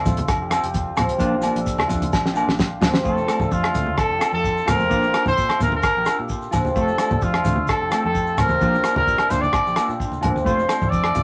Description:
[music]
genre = highlife guitar band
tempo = 130 BPM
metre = 4/4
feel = straight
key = F major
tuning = A4 = 440 Hz
[part]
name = cimbalom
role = arpeggios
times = 0.0-11.2 s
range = C4 to Bb4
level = -29 LUFS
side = equal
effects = none
[part]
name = mellow electric guitar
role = accompaniment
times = 0.1-11.2 s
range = F3 to F4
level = -30 LUFS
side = equal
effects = spring reverb
[part]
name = fingered electric bass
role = bass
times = 0.1-11.2 s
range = F1 to Bb2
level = -32 LUFS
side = equal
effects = none
[part]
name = damped 70s drum kit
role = drums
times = 0.1-11.2 s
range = hi-hat, kick drum, rim click, snare drum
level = -27 LUFS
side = equal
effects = none
[part]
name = congas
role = percussion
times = 0.1-11.2 s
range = none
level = -27 LUFS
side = equal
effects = none
[part]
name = shekere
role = percussion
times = 0.1-11.2 s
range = none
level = -39 LUFS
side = equal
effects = none
[part]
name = agogo bells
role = percussion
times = 0.3-11.2 s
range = none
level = -29 LUFS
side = equal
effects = none
[part]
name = clear trumpet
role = melody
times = 3.1-11.2 s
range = F4 to D5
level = -24 LUFS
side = equal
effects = none
[sound]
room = moderate studio reverb, RT60 0.6 s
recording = none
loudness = -20 LUFS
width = mono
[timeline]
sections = 0.0-3.1 A section; 3.1-11.2 B section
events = drum fill 2.1-3.1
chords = 0.0 F; 1.2 Bb; 3.1 F; 4.9 Bb; 6.8 F; 8.6 Bb; 10.5 F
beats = 0.29 0.75 | 1.21 1.67 2.13 2.59 | 3.06 3.52 3.98 4.44 | 4.91 5.37 5.83 6.30 | 6.76 7.22 7.69 8.15 | 8.61 9.07 9.54 10.00 | 10.46 10.92

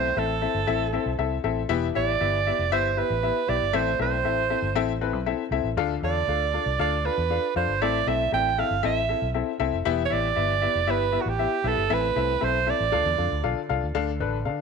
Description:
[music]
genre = uptempo 1960s-style soul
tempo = 118 BPM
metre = 4/4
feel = straight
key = D dorian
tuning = A4 = 440 Hz
[part]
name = clear alto saxophone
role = melody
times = 0.0-13.7 s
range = F#4 to G5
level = -25 LUFS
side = right 10 dB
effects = slapback echo
[part]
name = warm upright piano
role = accompaniment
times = 0.0-14.6 s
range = A2 to F5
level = -27 LUFS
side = left 13 dB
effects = none
[part]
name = vintage muted fingered electric bass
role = bass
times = 0.0-14.6 s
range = E1 to D3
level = -29 LUFS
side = right 1 dB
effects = none
[sound]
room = light reverb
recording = 1960s-style stereo with parts hard left and right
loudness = -22 LUFS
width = side -5 dB against mid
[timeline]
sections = 0.0-13.9 A section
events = none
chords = 0.0 Am; 1.7 Em; 3.7 Am; 5.8 Dm; 7.8 Am; 9.9 Em; 11.9 Am; 12.9 Dm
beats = 0.17 0.68 1.19 | 1.70 2.21 2.72 3.23 | 3.74 4.25 4.76 5.27 | 5.78 6.29 6.80 7.31 | 7.82 8.33 8.84 9.35 | 9.86 10.37 10.88 11.39 | 11.90 12.41 12.92 13.43 | 13.95 14.46

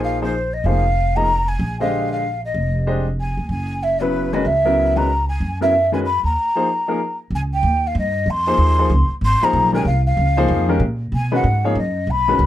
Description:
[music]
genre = modal jazz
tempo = 189 BPM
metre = 3/4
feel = swing 62% on 8ths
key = Db lydian from 7.3 s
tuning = A4 = 440 Hz
[part]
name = breathy mellow jazz flute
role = melody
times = 0.0-12.5 s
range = Cb5 to C6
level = -20 LUFS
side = equal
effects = none
[part]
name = bright upright piano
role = accompaniment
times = 0.0-12.4 s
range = Db3 to Eb5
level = -21 LUFS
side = left 2 dB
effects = none
[part]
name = upright bass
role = bass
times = 0.0-12.5 s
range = F1 to Cb3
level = -20 LUFS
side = equal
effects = none
[sound]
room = light reverb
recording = none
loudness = -16 LUFS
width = side -12 dB against mid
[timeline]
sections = 0.0-7.3 A section; 7.3-12.5 B section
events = break 6.4-7.3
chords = 0.0 Bb9sus4; 3.5 Gb9sus4; 6.4 Ab69; 7.3 Dbmaj9; 11.1 Cbadd9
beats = 0.01 0.33 | 0.65 0.96 1.28 | 1.60 1.92 2.23 | 2.55 2.87 3.19 | 3.50 3.82 4.14 | 4.46 4.77 5.09 | 5.41 5.72 6.04 | 6.36 6.68 7.00 | 7.31 7.63 7.95 | 8.27 8.58 8.90 | 9.22 9.53 9.85 | 10.17 10.49 10.80 | 11.12 11.44 11.76 | 12.08 12.39

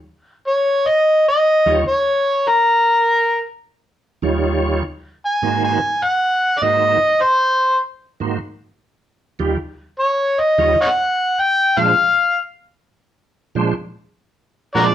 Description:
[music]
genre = blues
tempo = 101 BPM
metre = 4/4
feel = swing 67% on 8ths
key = unclear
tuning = A4 = 440 Hz
[part]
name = overdriven harmonica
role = melody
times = 0.5-14.9 s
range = Gb4 to Ab5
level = -14 LUFS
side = left 1 dB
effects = none
[part]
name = bright tonewheel organ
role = accompaniment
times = 1.7-14.9 s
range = Eb2 to Db5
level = -20 LUFS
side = right 3 dB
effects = slow rotary speaker, overdrive, chorus vibrato
[sound]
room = moderate studio reverb, RT60 0.6 s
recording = band playing live in one room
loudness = -15 LUFS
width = side -11 dB against mid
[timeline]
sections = 0.0-14.9 A section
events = none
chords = 0.0 Eb9; 4.8 Ab9; 9.6 Eb9; 12.0 Bb9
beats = | 0.08 0.67 1.27 1.86 | 2.46 3.05 3.65 4.24 | 4.83 5.43 6.02 6.62 | 7.21 7.80 8.40 8.99 | 9.59 10.19 10.78 11.38 | 11.97 12.57 13.16 13.76 | 14.35

